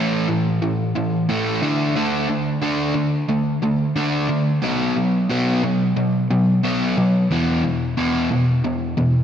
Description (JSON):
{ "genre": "rock", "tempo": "90 BPM", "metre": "4/4", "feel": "straight", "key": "B minor", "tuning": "A4 = 441 Hz", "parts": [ { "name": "overdriven semi-hollow guitar", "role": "solo", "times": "0.0-9.2 s", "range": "E2 to D4", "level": "-18 LUFS", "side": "equal", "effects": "none" } ], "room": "wet lush hall reverb, RT60 1.9 s, digital ambience", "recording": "big arena sound", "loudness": "-18 LUFS", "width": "side -9 dB against mid", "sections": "0.0-9.2 A section", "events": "none", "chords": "0.0 A5; 1.6 D5; 4.6 B5; 7.3 E5" }